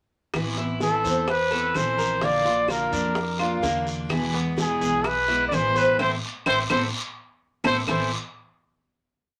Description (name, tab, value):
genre	latin, Cuban son and guajira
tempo	127 BPM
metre	4/4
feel	straight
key	A harmonic minor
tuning	A4 = 440 Hz
part	picked steel-string acoustic guitar	accompaniment	0.3-8.1 s	A2 to F4	-31 LUFS	equal	none
part	upright bass	bass	0.3-8.1 s	A1 to F2	-36 LUFS	equal	none
part	bongos	percussion	0.3-8.0 s	none	-35 LUFS	equal	none
part	claves	percussion	0.3-8.0 s	none	-35 LUFS	equal	none
part	guiro	percussion	0.3-8.0 s	none	-37 LUFS	equal	none
part	Cuban tres	arpeggios	0.6-8.1 s	A3 to C5	-30 LUFS	equal	none
part	breathy trumpet	melody	0.8-8.1 s	G#4 to D5	-26 LUFS	equal	none
room	wet club reverb, RT60 0.5 s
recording	none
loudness	-24 LUFS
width	mono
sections	0.3-7.9 A section; 7.9-9.4 final chord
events	band accent 6.0-7.9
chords	0.3 Amadd9; 2.2 Bb; 4.1 E; 6.0 Amadd9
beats	| 0.34 0.81 1.28 1.75 | 2.22 2.69 3.16 3.64 | 4.11 4.58 5.05 5.52 | 6.00 6.47 6.94 7.41 | 7.88